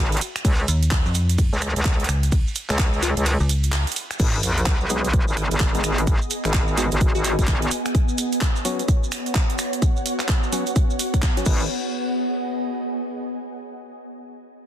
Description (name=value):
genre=bass house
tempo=128 BPM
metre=4/4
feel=swing 61% on 16ths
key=G# dorian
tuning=A4 = 441 Hz
part: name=metallic wobble bass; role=bass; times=0.0-7.7, 11.5-11.7 s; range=G#1 to C#2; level=-22 LUFS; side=equal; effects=chorus, tube saturation, sidechain pumping
part: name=house drum kit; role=drums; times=0.1-11.6 s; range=crash cymbal, finger snaps, handclaps, hi-hat, ride cymbal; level=-28 LUFS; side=right 1 dB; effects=soft clipping on snare
part: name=maracas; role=percussion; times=0.1-11.7 s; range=none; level=-33 LUFS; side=right 5 dB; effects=none
part: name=electronic kick drum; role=drums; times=0.4-11.6 s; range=none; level=-20 LUFS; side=equal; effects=none
part: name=metallic FM bass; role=bass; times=0.7-3.8 s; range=C#2 to E#2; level=-20 LUFS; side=equal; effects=overdrive, sidechain pumping
part: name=glassy wavetable pluck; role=melody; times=3.0-3.4, 6.8-7.3 s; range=E#4 to F#4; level=-31 LUFS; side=left 3 dB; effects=chorus, ping-pong delay
part: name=sub drop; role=sound effects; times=4.2-6.1 s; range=none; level=-31 LUFS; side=equal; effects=none
part: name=ethereal airy pad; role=texture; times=5.4-13.5 s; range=B3 to G#5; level=-27 LUFS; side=right 1 dB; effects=ensemble chorus, built-in reverb, sidechain pumping
part: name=percussive organ stab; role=stabs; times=4.9-11.6 s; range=F#3 to B4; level=-30 LUFS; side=left 2 dB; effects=chorus, sidechain pumping, ping-pong delay
room=little or no reverb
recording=dense, heavily limited modern master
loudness=-19 LUFS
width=side -10 dB against mid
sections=0.0-4.2 A section; 4.2-11.7 B section; 11.7-13.6 C section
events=drop 0.0-4.2; kick drops out 3.3-4.2; impact 4.2-6.1; filter sweep on synth stab 4.2-11.7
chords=0.4 N.C.; 4.2 G#m; 7.9 F#sus4; 11.5 G#m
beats=| 0.45 0.92 1.38 1.85 | 2.32 2.79 3.26 3.73 | 4.20 4.67 5.13 5.60 | 6.07 6.54 7.01 7.48 | 7.95 8.41 8.88 9.35 | 9.82 10.29 10.76 11.23 | 11.70 12.16 12.63 13.10